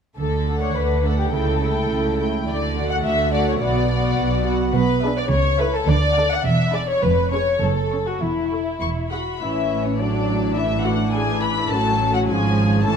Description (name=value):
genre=quick classical-period movement for string orchestra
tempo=104 BPM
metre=2/4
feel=straight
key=D major, A major from 4.8 s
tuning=A4 = 440 Hz
part: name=dark studio violin section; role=second line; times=0.2-13.0 s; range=C#4 to F#5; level=-23 LUFS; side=left 3 dB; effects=none
part: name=warm studio cello section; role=bass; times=0.2-13.0 s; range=E2 to D3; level=-25 LUFS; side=right 2 dB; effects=none
part: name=warm studio double bass section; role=bass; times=0.2-13.0 s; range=E1 to D2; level=-24 LUFS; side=right 3 dB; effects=none
part: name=warm studio violin section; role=melody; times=0.5-13.0 s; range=C#5 to C#6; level=-27 LUFS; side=left 4 dB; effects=none
part: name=dark studio viola section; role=accompaniment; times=0.5-13.0 s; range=E3 to A4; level=-25 LUFS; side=equal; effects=none
room=moderate scoring stage reverb, RT60 1.7 s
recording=dark, warm production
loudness=-18 LUFS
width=side -7 dB against mid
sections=0.2-9.4 A section; 9.4-13.0 B section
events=none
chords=0.2 D; 1.3 A7/C#; 2.5 D; 3.6 Bm; 4.8 E7/B; 5.3 A/C#; 5.9 D; 6.5 E7; 7.0 C#7/E#; 7.6 F#m; 8.2 A/E; 8.8 E; 9.4 A; 10.0 D/A; 10.6 D69/A; 11.7 A; 12.3 C#/G#